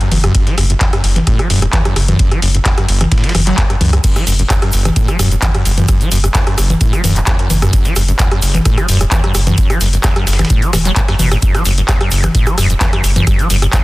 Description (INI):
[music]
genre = acid house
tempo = 130 BPM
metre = 4/4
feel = straight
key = unclear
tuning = A4 = 443 Hz
[part]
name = acid bass, saw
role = riff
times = 0.0-13.8 s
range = F#1 to F#3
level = -17 LUFS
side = equal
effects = overdrive, lush chorus, sidechain pumping, analog delay
[part]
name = booming analog drum machine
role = drums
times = 0.0-13.8 s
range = congas, crash cymbal, handclaps, hi-hat, rim click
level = -17 LUFS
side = left 1 dB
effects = studio reverb
[part]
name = dusty soul sampler-style drum kit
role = drums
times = 0.0-13.8 s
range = ride cymbal, snare drum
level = -27 LUFS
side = right 4 dB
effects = high-pass filter on snare, studio reverb, sidechain pumping on cymbals, high-pass filter on cymbals
[part]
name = round analog bass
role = bass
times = 0.1-13.7 s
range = E1 to C#2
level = -14 LUFS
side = equal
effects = sidechain pumping
[part]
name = electronic kick drum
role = drums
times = 0.3-13.8 s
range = none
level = -15 LUFS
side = equal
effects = studio reverb
[part]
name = egg shaker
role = percussion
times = 4.0-13.8 s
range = none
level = -26 LUFS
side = right 3 dB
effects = none
[sound]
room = digital ambience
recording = dense, heavily limited modern master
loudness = -10 LUFS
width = side -19 dB against mid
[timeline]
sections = 0.0-13.8 A section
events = none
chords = none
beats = | 0.35 0.81 1.27 1.73 | 2.19 2.65 3.12 3.58 | 4.04 4.50 4.96 5.42 | 5.88 6.35 6.81 7.27 | 7.73 8.19 8.65 9.12 | 9.58 10.04 10.50 10.96 | 11.42 11.88 12.35 12.81 | 13.27 13.73